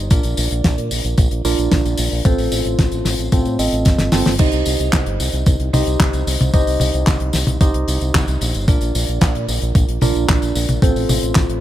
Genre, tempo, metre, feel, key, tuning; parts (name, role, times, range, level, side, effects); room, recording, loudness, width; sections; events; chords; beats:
italo disco; 112 BPM; 4/4; straight; C dorian; A4 = 438 Hz
bell-like tine electric piano; stabs; 0.0-11.6 s; C4 to Eb5; -21 LUFS; right 2 dB; phaser, ping-pong delay
fingered electric bass with an envelope filter; bass; 0.0-11.6 s; G1 to Bb2; -20 LUFS; equal; tube saturation
damped 70s drum kit; drums; 0.1-11.6 s; crash cymbal, handclaps, hi-hat, snare drum, tambourine, toms; -21 LUFS; left 1 dB
electronic kick drum; drums; 0.1-11.5 s; -15 LUFS; equal; overdrive
small room reverb; -14 LUFS; side -12 dB against mid
0.0-4.4 A section; 4.4-11.6 B section
drum fill 3.9-4.4
0.1 Bb; 2.3 F/A; 4.4 Cm; 8.7 Bb; 10.8 F/A
| 0.11 0.65 1.18 1.72 | 2.25 2.79 3.32 3.86 | 4.39 4.93 5.47 6.00 | 6.54 7.07 7.61 8.14 | 8.68 9.22 9.75 10.29 | 10.82 11.36